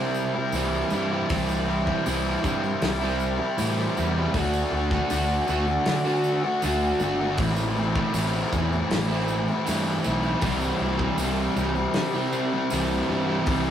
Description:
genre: rock, shoegaze and dream pop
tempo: 79 BPM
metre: 4/4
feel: straight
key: C lydian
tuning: A4 = 440 Hz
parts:
  - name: overdriven semi-hollow guitar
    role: riff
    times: 0.0-13.7 s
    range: A2 to F#4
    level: -29 LUFS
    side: right 4 dB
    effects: none
  - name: raw garage guitar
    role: riff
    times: 0.0-13.7 s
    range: A2 to F#4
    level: -26 LUFS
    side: left 2 dB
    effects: overdrive
  - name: fuzz fingered electric bass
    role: bass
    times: 0.0-13.7 s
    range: G1 to D3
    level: -29 LUFS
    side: equal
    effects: overdrive
  - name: tambourine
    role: percussion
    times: 0.1-13.0 s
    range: none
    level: -43 LUFS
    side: right 5 dB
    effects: none
  - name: loose indie drum kit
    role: drums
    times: 0.6-13.6 s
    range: hi-hat, kick drum, snare drum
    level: -32 LUFS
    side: left 1 dB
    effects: none
  - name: overdriven semi-hollow guitar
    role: riff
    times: 10.4-13.7 s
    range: C3 to C4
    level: -30 LUFS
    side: equal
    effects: none
room: wet studio reverb, RT60 0.6 s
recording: rough rehearsal-room recording, warm saturation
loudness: -22 LUFS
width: side -9 dB against mid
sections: 0.0-13.7 A section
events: none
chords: 0.0 C; 4.3 D; 7.4 Am; 10.4 C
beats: 0.55 | 1.31 2.07 2.82 3.58 | 4.34 5.10 5.86 6.62 | 7.38 8.14 8.90 9.66 | 10.42 11.19 11.95 12.71 | 13.47

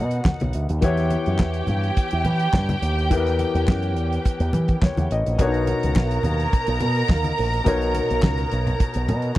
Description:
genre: disco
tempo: 105 BPM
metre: 4/4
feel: straight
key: B major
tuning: A4 = 437 Hz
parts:
  - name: dark studio string section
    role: second line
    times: 0.0-9.4 s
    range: F#4 to A#5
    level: -27 LUFS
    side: right 3 dB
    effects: none
  - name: warm grand piano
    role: accompaniment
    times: 0.0-9.4 s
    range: B2 to D#5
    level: -26 LUFS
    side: left 4 dB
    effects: none
  - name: picked electric bass with an envelope filter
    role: bass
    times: 0.0-9.3 s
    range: A1 to E3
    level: -23 LUFS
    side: equal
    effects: none
  - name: damped 70s drum kit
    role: drums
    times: 0.1-9.4 s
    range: handclaps, hi-hat, kick drum, snare drum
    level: -20 LUFS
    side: right 1 dB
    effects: none
  - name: congas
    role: percussion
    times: 0.3-9.2 s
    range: none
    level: -29 LUFS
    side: left 1 dB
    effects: none
room: little or no reverb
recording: dry, close 1970s-style studio recording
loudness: -19 LUFS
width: side -15 dB against mid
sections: 0.0-9.4 A section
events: grand piano fill 4.5-5.4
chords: 0.0 Bmaj9; 0.8 Em6; 5.4 Bmaj9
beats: 0.26 | 0.83 1.40 1.97 2.54 | 3.11 3.68 4.25 4.82 | 5.39 5.96 6.53 7.10 | 7.67 8.23 8.80 9.37

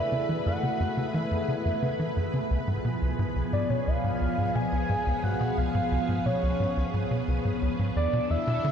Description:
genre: ambient, sequencer-driven space music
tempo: 88 BPM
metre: 4/4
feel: straight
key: unclear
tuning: A4 = 440 Hz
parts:
  - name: pulse-width lead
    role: melody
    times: 0.0-8.7 s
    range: C#5 to G#5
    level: -31 LUFS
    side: right 1 dB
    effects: chorus, ping-pong delay
  - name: string machine, full ensemble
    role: sustained chords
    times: 0.0-8.7 s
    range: E#3 to B4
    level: -30 LUFS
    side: left 1 dB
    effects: phaser, ensemble chorus
  - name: tight sequencer bass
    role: riff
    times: 0.0-8.7 s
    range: C#2 to E3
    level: -28 LUFS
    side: equal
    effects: ping-pong delay
room: wet huge ambient reverb, RT60 6.9 s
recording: dark, warm production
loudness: -25 LUFS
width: side -8 dB against mid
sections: 0.0-8.7 A section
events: none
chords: 0.0 F#m7; 2.5 C#7; 8.0 E7sus4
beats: 0.46 1.15 1.83 | 2.51 3.19 3.87 4.55 | 5.24 5.92 6.60 7.28 | 7.96 8.64

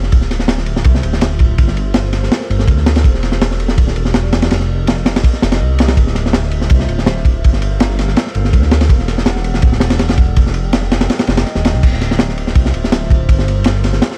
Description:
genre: drum and bass, jungle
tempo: 164 BPM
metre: 4/4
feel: straight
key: unclear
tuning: A4 = 440 Hz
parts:
  - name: dark detuned saw bass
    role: bass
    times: 0.0-14.0 s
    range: D1 to D2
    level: -18 LUFS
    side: equal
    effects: none
  - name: crunchy breakbeat drum kit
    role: drums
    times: 0.0-14.2 s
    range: crash cymbal, kick drum, ride cymbal, snare drum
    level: -16 LUFS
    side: equal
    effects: none
  - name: warbly tape-like pad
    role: sustained chords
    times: 0.1-14.2 s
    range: F4 to G5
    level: -30 LUFS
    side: equal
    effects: chorus, built-in reverb
room: little or no reverb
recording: dark, warm production, vinyl crackle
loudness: -14 LUFS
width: mono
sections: 0.0-11.8 A section; 11.8-14.2 A section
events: drop 0.0-11.8, 11.8-14.2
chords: 0.1 Dm11; 1.6 Gm11; 3.0 Em11; 4.5 Fm11; 6.0 Dm11; 7.4 Gm11; 8.9 Em11; 10.4 Fm11; 11.8 Dm11; 13.3 Gm11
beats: | 0.12 0.49 0.85 1.22 | 1.58 1.95 2.31 2.68 | 3.05 3.41 3.78 4.14 | 4.51 4.88 5.24 5.61 | 5.97 6.34 6.71 7.07 | 7.44 7.80 8.17 8.54 | 8.90 9.27 9.63 10.00 | 10.36 10.73 11.10 11.46 | 11.83 12.19 12.56 12.93 | 13.29 13.66 14.02

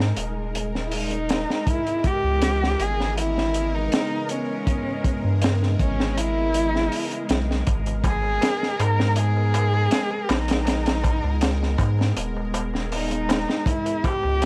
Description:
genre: trip hop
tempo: 80 BPM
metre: 4/4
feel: straight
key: G# harmonic minor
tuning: A4 = 440 Hz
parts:
  - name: dark cello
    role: melody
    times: 0.0-14.5 s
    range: C#4 to A#4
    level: -28 LUFS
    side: equal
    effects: none
  - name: warbly tape-like pad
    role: sustained chords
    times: 0.0-14.5 s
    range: C#3 to D#5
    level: -36 LUFS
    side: equal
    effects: chorus, built-in reverb
  - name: round analog bass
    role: bass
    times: 0.0-14.5 s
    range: D#1 to G#2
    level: -26 LUFS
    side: equal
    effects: none
  - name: crunchy breakbeat drum kit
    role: drums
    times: 0.0-14.5 s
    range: hi-hat, kick drum, snare drum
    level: -27 LUFS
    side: equal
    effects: none
  - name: bowed-like drone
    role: texture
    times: 0.0-14.5 s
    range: G#3 to A#4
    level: -37 LUFS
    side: equal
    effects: built-in reverb, phaser
  - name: darbuka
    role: percussion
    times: 7.7-14.5 s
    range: none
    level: -37 LUFS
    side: equal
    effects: none
room: little or no reverb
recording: dry, gritty hardware recording, vinyl crackle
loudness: -23 LUFS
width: mono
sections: 0.0-14.5 A section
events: none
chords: 0.0 G#sus2; 1.7 C#m9; 7.7 G#madd9; 13.7 C#m9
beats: 0.17 0.92 | 1.67 2.42 3.17 3.92 | 4.67 5.42 6.17 6.92 | 7.67 8.42 9.17 9.92 | 10.67 11.42 12.17 12.92 | 13.67 14.42

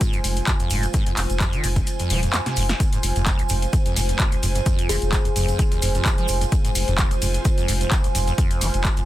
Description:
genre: acid house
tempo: 129 BPM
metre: 4/4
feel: swing 54% on 16ths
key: F minor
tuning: A4 = 440 Hz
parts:
  - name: dark analog pad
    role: sustained chords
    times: 0.0-9.1 s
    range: Ab3 to C5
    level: -33 LUFS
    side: right 4 dB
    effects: chorus, phaser, sidechain pumping
  - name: acid bass, saw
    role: riff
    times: 0.0-9.0 s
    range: F1 to F3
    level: -27 LUFS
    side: equal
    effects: overdrive, wide subtle chorus, vintage 12-bit sampler grit, sidechain pumping
  - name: electronic kick drum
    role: drums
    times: 0.0-8.9 s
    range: none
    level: -21 LUFS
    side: equal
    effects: overdrive
  - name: punchy analog drum machine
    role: drums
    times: 0.0-9.1 s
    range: handclaps, hi-hat, snare drum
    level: -26 LUFS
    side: left 1 dB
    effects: overdrive
  - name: cabasa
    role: percussion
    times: 0.0-9.1 s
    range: none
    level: -33 LUFS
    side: right 4 dB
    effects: none
  - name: airy breathy pad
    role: texture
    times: 0.0-9.1 s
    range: F4 to Ab5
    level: -30 LUFS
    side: right 1 dB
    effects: chorus, phaser, sidechain pumping
  - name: saturated sub bass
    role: bass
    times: 0.2-8.9 s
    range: Eb1 to F1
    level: -24 LUFS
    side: equal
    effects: tube saturation, sidechain pumping
  - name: kalimba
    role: melody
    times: 4.9-5.4 s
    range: Ab4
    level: -32 LUFS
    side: left 8 dB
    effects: vintage 12-bit sampler grit, ping-pong delay
room: little or no reverb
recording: dense, heavily limited modern master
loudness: -18 LUFS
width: side -14 dB against mid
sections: 0.0-2.8 A section; 2.8-9.1 B section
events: kick drops out 1.9-2.8; drum fill 2.3-2.8; drop 2.8-9.1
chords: 0.0 Fm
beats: 0.01 0.47 | 0.94 1.41 1.87 2.33 | 2.80 3.27 3.73 4.20 | 4.66 5.13 5.59 6.06 | 6.52 6.99 7.45 7.92 | 8.38 8.85

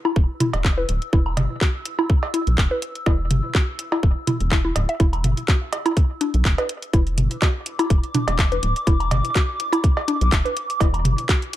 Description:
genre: minimal techno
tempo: 124 BPM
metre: 4/4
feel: swing 55% on 16ths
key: E minor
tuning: A4 = 439 Hz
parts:
  - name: warbly tape-like pad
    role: texture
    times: 0.4-11.6 s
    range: D6 to E6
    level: -30 LUFS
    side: left 1 dB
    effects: chorus, built-in reverb, sidechain pumping
  - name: mallet-like synth pluck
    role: riff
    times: 0.1-11.3 s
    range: D4 to E5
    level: -26 LUFS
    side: equal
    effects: chorus, sidechain pumping, tape echo
  - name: electronic woodblock, toms and cowbell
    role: percussion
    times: 0.1-11.2 s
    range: none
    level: -25 LUFS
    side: right 1 dB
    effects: overdrive, dub echo
  - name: rubbery square bass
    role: bass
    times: 0.2-11.2 s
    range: D1 to B1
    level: -22 LUFS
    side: equal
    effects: sidechain pumping
  - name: electronic kick drum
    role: drums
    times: 0.2-11.4 s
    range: none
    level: -18 LUFS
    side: equal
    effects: none
  - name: garage drum kit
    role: drums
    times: 0.4-11.6 s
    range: handclaps, hi-hat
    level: -27 LUFS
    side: equal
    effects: none
room: little or no reverb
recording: none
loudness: -18 LUFS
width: side -14 dB against mid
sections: 0.0-11.6 A section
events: fade-in on ambient pad 0.0-11.6; filter sweep on synth arpeggio sound 0.0-11.6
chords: 0.0 E5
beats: 0.16 0.65 | 1.13 1.61 2.10 2.58 | 3.06 3.55 4.03 4.52 | 5.00 5.48 5.97 6.45 | 6.93 7.42 7.90 8.39 | 8.87 9.36 9.84 10.32 | 10.81 11.29

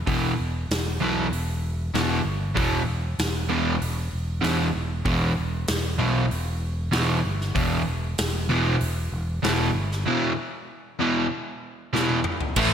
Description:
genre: hard rock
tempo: 96 BPM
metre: 4/4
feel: straight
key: E minor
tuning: A4 = 440 Hz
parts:
  - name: fingered electric bass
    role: bass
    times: 0.0-12.7 s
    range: E1 to B1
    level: -27 LUFS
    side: equal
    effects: none
  - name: overdriven semi-hollow guitar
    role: riff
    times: 0.1-12.7 s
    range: E2 to A3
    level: -24 LUFS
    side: equal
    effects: none
  - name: big rock drum kit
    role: drums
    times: 0.1-12.7 s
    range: crash cymbal, hi-hat, kick drum, snare drum, toms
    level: -30 LUFS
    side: equal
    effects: none
  - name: distorted electric guitar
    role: riff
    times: 12.6-12.7 s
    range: A2 to A3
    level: -21 LUFS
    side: equal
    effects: distortion
room: moderate lush hall reverb, RT60 2.1 s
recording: big arena sound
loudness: -22 LUFS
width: side -8 dB against mid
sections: 0.0-12.6 A section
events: drum fill 11.9-12.6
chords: 0.0 E5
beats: | 0.07 0.69 1.32 1.94 | 2.57 3.19 3.81 4.44 | 5.06 5.69 6.31 6.94 | 7.56 8.19 8.81 9.44 | 10.07 10.69 11.32 11.94 | 12.57

